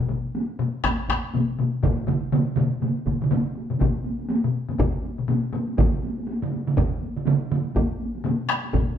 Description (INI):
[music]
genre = japanese traditional, taiko drum ensemble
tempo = 121 BPM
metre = 4/4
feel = swing 60% on 16ths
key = none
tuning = none
[part]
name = taiko ensemble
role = percussion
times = 0.0-8.9 s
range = none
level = -26 LUFS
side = left 4 dB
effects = none
[part]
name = taiko ensemble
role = percussion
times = 0.1-8.9 s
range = none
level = -28 LUFS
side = right 1 dB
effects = none
[part]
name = taiko ensemble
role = percussion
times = 0.8-8.9 s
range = none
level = -24 LUFS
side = equal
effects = none
[part]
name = taiko ensemble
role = percussion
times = 1.8-7.6 s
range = none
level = -25 LUFS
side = right 5 dB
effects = none
[sound]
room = wet large studio reverb, RT60 1.0 s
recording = band playing live in one room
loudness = -22 LUFS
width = side -9 dB against mid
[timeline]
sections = 0.0-3.8 A section; 3.8-9.0 B section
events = none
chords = none